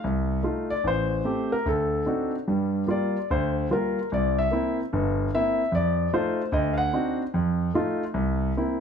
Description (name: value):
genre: solo jazz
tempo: 148 BPM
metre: 4/4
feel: swing 65% on 8ths, rubato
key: F mixolydian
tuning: A4 = 440 Hz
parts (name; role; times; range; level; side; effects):
- warm concert grand piano; solo; 0.0-8.8 s; G1 to F#5; -23 LUFS; equal; none
room: moderate large studio reverb, RT60 1.1 s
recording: band playing live in one room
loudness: -23 LUFS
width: side -7 dB against mid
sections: 0.0-8.8 A section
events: grand piano solo 0.0-8.8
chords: 0.0 F7; 0.8 Am7; 1.7 D7b9; 2.5 Gm7; 4.1 C7; 5.7 F7; 6.5 D7b9; 7.3 F7; 8.2 C7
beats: 0.04 0.45 | 0.85 1.25 1.66 2.07 | 2.48 2.89 3.30 3.70 | 4.11 4.52 4.92 5.32 | 5.72 6.13 6.53 6.94 | 7.34 7.75 8.16 8.57